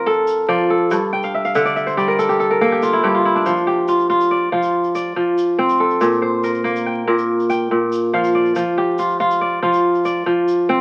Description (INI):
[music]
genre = west african traditional, West African string and xylophone music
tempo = 94 BPM (dotted quarters)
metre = 12/8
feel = straight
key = F major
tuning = A4 = 440 Hz
[part]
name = kora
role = arpeggios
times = 0.0-10.8 s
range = G2 to G5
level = -18 LUFS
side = equal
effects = none
[part]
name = tube shaker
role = percussion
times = 0.3-10.6 s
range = none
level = -46 LUFS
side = equal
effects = none
[sound]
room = light reverb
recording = very old 78 rpm record, vinyl crackle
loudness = -18 LUFS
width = mono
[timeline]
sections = 0.0-3.5 A section; 3.5-10.8 B section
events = kora fill 1.1-3.5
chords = 0.0 F; 0.9 Gm; 3.5 F; 6.0 Bb5; 8.6 N.C.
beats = 0.27 | 0.91 1.55 2.19 2.82 | 3.46 4.10 4.73 5.37 | 6.01 6.65 7.29 7.92 | 8.56 9.20 9.83 10.47